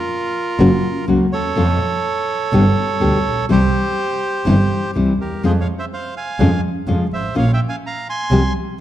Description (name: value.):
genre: tango.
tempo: 124 BPM.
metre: 4/4.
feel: rubato.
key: unclear.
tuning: A4 = 441 Hz.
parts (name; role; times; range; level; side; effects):
bandoneon; melody; 0.0-8.5 s; F4 to C6; -22 LUFS; right 3 dB; none.
nylon-string guitar; accompaniment; 0.6-8.4 s; B2 to G4; -18 LUFS; left 2 dB; none.
clear double bass; bass; 0.6-8.5 s; Gb1 to F2; -18 LUFS; right 1 dB; none.
room: moderate concert hall reverb, RT60 1.8 s.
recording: dark, warm production.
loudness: -15 LUFS.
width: side -12 dB against mid.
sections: 0.0-8.8 A section.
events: none.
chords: 0.0 Bb5/F; 0.6 Gb; 1.6 F; 2.5 G; 3.5 C; 5.4 Fm; 6.4 Db/F; 7.4 Bbm.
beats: 0.11 0.59 1.08 | 1.56 2.04 2.52 3.01 | 3.49 3.97 4.45 4.94 | 5.42 5.91 6.39 6.87 | 7.35 7.83 8.31.